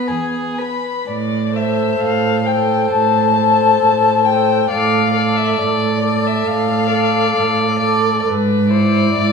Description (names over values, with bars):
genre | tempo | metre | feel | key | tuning
classical, slow romantic movement for string quartet | 67 BPM | 4/4 | rubato | A minor | A4 = 441 Hz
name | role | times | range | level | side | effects
dark violin | melody | 0.0-9.3 s | B4 to B5 | -18 LUFS | left 7 dB | none
rich violin | second line | 0.0-9.3 s | G#4 to D5 | -20 LUFS | left 4 dB | none
dark viola | accompaniment | 0.0-9.3 s | B3 to A4 | -21 LUFS | right 4 dB | none
dark cello | bass | 0.1-9.3 s | E2 to A2 | -19 LUFS | right 4 dB | none
room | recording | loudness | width
wet scoring stage reverb, RT60 1.6 s | minimal, uncompressed stereo recording | -13 LUFS | side -5 dB against mid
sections
0.0-1.1 A section; 1.1-9.3 B section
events
none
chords
0.0 E; 1.1 Am; 8.3 E7/G#